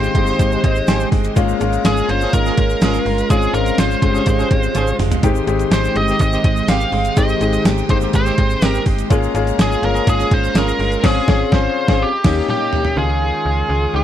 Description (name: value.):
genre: 1980s-style pop.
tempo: 124 BPM.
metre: 4/4.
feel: straight.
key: unclear.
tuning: A4 = 444 Hz.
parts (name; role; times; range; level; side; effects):
biting lead guitar; melody; 0.0-14.0 s; G4 to F5; -21 LUFS; right 1 dB; overdrive.
warm grand piano; accompaniment; 0.0-14.0 s; Db3 to Ab5; -22 LUFS; left 10 dB; none.
string machine, violas; sustained chords; 0.0-14.0 s; Ab3 to Eb6; -27 LUFS; equal; ensemble chorus.
direct-recorded clean electric guitar; riff; 0.0-14.0 s; Eb3 to G4; -24 LUFS; right 6 dB; lush chorus, tape echo.
slap-like FM bass; bass; 0.0-14.0 s; G1 to Eb2; -21 LUFS; equal; none.
egg shaker; percussion; 0.0-11.0 s; none; -40 LUFS; right 16 dB; none.
gated 80s digital drum machine; drums; 0.1-13.0 s; crash cymbal, hi-hat, kick drum, snare drum, tambourine, toms; -17 LUFS; equal; gated reverb, gated reverb snare, overdrive.
warm horn section; stabs; 0.3-14.0 s; Db3 to C5; -26 LUFS; right 4 dB; none.
room: little or no reverb.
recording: dry, close 1970s-style studio recording.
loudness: -14 LUFS.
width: side -10 dB against mid.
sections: 0.0-13.0 A section; 13.0-14.0 B section.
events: grand piano fill 0.4-1.4; drum fill 4.8-5.2, 12.0-13.0; band accent 11.0-13.0.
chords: 0.0 Cm7; 1.4 Bbm7; 3.3 Dbmaj7; 5.2 Abmaj7; 9.1 Bbm7; 11.0 Dbmaj7/Ab; 12.0 Eb7; 13.0 Dbadd9.